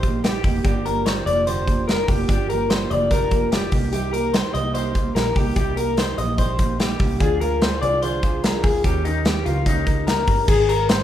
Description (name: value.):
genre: jangly indie pop.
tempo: 146 BPM.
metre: 4/4.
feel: straight.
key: C minor.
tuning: A4 = 440 Hz.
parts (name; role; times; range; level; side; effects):
fingerpicked steel-string acoustic guitar; accompaniment; 0.0-10.5 s; G2 to Bb4; -27 LUFS; right 5 dB; none.
electric guitar through a small old amp; arpeggios; 0.0-11.0 s; Eb4 to Eb5; -23 LUFS; left 3 dB; harmonic tremolo.
vintage muted fingered electric bass; bass; 0.0-11.0 s; F1 to Eb2; -26 LUFS; equal; none.
big rock drum kit; drums; 0.0-11.0 s; crash cymbal, hi-hat, kick drum, snare drum; -22 LUFS; equal; none.
room: moderate recital hall reverb, RT60 1.5 s.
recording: recorded in a church or concert hall.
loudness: -18 LUFS.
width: side -11 dB against mid.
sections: 0.0-10.5 A section.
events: none.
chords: 0.0 Cm7; 0.6 Gm7; 3.7 Cm7; 7.2 Ddim; 8.8 Eb7; 10.5 Abadd9.